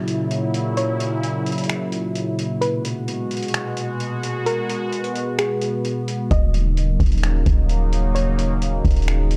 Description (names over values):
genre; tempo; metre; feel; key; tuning
hip hop, atmospheric cloud-rap; 130 BPM; 4/4; half-time; unclear; A4 = 436 Hz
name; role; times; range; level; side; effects
sweeping resonant pad; sustained chords; 0.0-9.4 s; A#2 to F#4; -26 LUFS; equal; chorus, sidechain pumping
trip hop sampler-style drum kit; drums; 0.1-9.4 s; finger snaps, hi-hat, kick drum; -27 LUFS; equal; overdrive
soft round pluck; melody; 0.8-9.4 s; G#4 to D#5; -29 LUFS; equal; chorus, delay
warm 808-style bass; bass; 6.3-9.4 s; D#1; -21 LUFS; equal; none
room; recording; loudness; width
little or no reverb; dark, warm production; -22 LUFS; mono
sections
0.0-9.4 A section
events
break 0.0-6.3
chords
0.0 F#7; 2.6 G#m9; 6.3 D#m7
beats
0.31 | 0.77 1.23 1.70 2.16 | 2.62 3.08 3.54 4.00 | 4.46 4.93 5.39 5.85 | 6.31 6.77 7.23 7.70 | 8.16 8.62 9.08